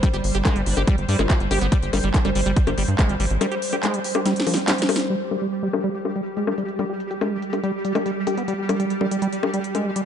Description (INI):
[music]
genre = psychedelic trance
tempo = 142 BPM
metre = 4/4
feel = straight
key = unclear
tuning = A4 = 438 Hz
[part]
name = pulsing gated texture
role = sustained chords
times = 0.0-10.1 s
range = G3 to C5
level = -27 LUFS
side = right 1 dB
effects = chorus, built-in reverb, sidechain pumping
[part]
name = liquid acid bass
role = riff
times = 0.0-10.0 s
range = F3 to G4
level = -25 LUFS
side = right 1 dB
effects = chorus, auto-pan, sidechain pumping, digital delay
[part]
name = electronic kick drum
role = drums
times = 0.0-3.1 s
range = none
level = -20 LUFS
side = equal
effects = overdrive, studio reverb
[part]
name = techno drum kit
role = drums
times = 0.0-10.0 s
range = bongos, handclaps, hi-hat, snare drum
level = -25 LUFS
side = left 3 dB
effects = overdrive, low-pass filter on hats, studio reverb, low-pass filter on snare, low-pass filter on perc
[part]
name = tight sequencer bass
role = bass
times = 0.1-3.4 s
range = G1 to G2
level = -23 LUFS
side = equal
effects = none
[part]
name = metallic wobble bass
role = second line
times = 0.7-1.4 s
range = D4 to F4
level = -37 LUFS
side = left 2 dB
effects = none
[sound]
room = moderate lush hall reverb, RT60 2.0 s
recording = dark, warm production, nothing above 10.6 kHz, faint mains hum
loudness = -20 LUFS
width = side -8 dB against mid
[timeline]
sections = 0.0-5.1 A section; 5.1-10.1 B section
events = kick drops out 3.4-5.1; drum fill 4.3-5.1; filter sweep on drum 5.1-10.1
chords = 0.0 G5; 5.1 N.C.